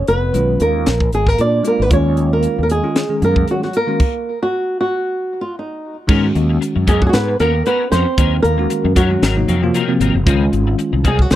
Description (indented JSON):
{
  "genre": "electric jazz fusion",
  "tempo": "115 BPM",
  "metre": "4/4",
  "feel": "swing 55% on 16ths",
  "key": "Eb minor",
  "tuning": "A4 = 440 Hz",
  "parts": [
    { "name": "flamenco guitar", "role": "melody", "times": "0.0-11.4 s", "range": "Eb4 to D5", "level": "-19 LUFS", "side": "equal", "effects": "none" },
    { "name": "breathy trombone", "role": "second line", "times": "0.0-11.4 s", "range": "F#3 to D4", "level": "-23 LUFS", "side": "right 7 dB", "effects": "none" },
    { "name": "fretless electric bass", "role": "bass", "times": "0.0-11.4 s", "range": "F1 to Bb2", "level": "-17 LUFS", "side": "equal", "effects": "lush chorus" },
    { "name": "crisp fusion drum kit", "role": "drums", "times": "0.1-11.4 s", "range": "crash cymbal, hi-hat, kick drum, snare drum", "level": "-17 LUFS", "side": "equal", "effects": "none" },
    { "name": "bell-like tine electric piano", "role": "accompaniment", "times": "0.3-11.0 s", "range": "B#2 to Ab4", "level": "-19 LUFS", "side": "left 1 dB", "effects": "fast stereo tremolo" },
    { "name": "electric guitar at the edge of break-up", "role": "stabs", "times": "6.1-11.2 s", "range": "E#3 to A#4", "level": "-24 LUFS", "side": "left 9 dB", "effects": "ensemble chorus" }
  ],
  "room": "small room ambience",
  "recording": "dry, close 1970s-style studio recording",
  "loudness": "-13 LUFS",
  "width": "side -13 dB against mid",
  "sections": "0.0-6.1 A section; 6.1-11.4 B section",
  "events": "stop 4.0-6.1",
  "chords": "0.0 Fm7b5; 0.9 Bb7; 1.9 Ebm9; 6.1 G#m11; 8.2 D#m7; 9.2 G#9; 10.3 C#maj9"
}